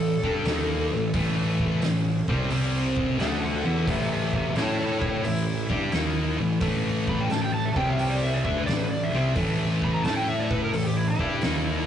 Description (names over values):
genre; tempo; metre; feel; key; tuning
blues rock power trio and southern rock; 88 BPM; 4/4; swing 67% on 8ths; unclear; A4 = 440 Hz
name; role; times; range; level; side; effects
overdriven slide guitar; melody; 0.0-11.9 s; E4 to B5; -29 LUFS; left 1 dB; none
thick fuzz guitar; riff; 0.0-11.9 s; A2 to A4; -27 LUFS; equal; distortion
fuzz picked electric bass; bass; 0.0-11.9 s; A1 to A2; -28 LUFS; equal; overdrive
oversized low-tuned drum kit; drums; 0.2-11.6 s; hi-hat, kick drum, snare drum; -30 LUFS; equal; none
room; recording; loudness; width
wet booth ambience, RT60 0.2 s; rough rehearsal-room recording, warm saturation, nothing above 10.5 kHz; -22 LUFS; side -9 dB against mid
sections
0.0-11.9 A section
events
electric slide guitar solo 0.0-11.9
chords
0.0 A5; 2.5 C5; 3.2 A5; 7.7 C5; 8.3 A5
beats
0.46 | 1.15 1.83 2.51 3.20 | 3.88 4.57 5.25 5.94 | 6.62 7.31 7.99 8.68 | 9.37 10.05 10.74 11.43